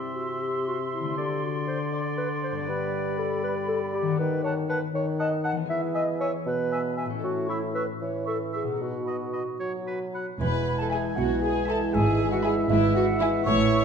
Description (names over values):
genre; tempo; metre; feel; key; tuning
cinematic, playful, whimsical film cue; 79 BPM (dotted quarters); 6/8; straight; G major, E major from 4.2 s; A4 = 440 Hz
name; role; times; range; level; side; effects
bright oboe; second line; 0.0-13.8 s; B4 to G#5; -36 LUFS; right 2 dB; none
dark clarinet; second line; 0.0-13.8 s; E4 to F#5; -31 LUFS; equal; none
hollow flute section; second line; 0.0-13.8 s; E5 to C#6; -35 LUFS; left 2 dB; none
mellow bassoon; accompaniment; 0.0-13.8 s; A2 to G3; -32 LUFS; right 2 dB; none
concert harp; arpeggios; 0.0-13.8 s; E2 to C5; -33 LUFS; left 8 dB; none
music box; melody; 10.4-13.8 s; E5 to C#6; -33 LUFS; equal; none
rich studio viola section; accompaniment; 10.4-13.8 s; E4 to C#5; -27 LUFS; right 3 dB; none
mellow French horn section; sustained chords; 10.4-13.8 s; G#3 to E4; -30 LUFS; right 1 dB; none
rich studio cello section; bass; 10.4-13.8 s; E2 to B2; -30 LUFS; right 1 dB; none
rich studio double bass section; bass; 10.4-13.8 s; E1 to B1; -29 LUFS; right 4 dB; none
rich studio violin section; melody; 10.9-13.4 s; B5; -43 LUFS; left 4 dB; none
rich studio violin section; second line; 10.9-13.4 s; E5 to G#5; -37 LUFS; left 3 dB; none
room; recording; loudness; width
moderate scoring stage reverb, RT60 1.7 s; dark, warm production, nothing above 10.6 kHz; -24 LUFS; side -6 dB against mid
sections
0.0-10.4 A section; 10.4-13.8 B section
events
none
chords
0.0 C; 1.2 D5; 2.7 G; 4.2 B7/D#; 5.7 E; 7.2 A; 8.8 B; 10.4 E; 11.9 E/G#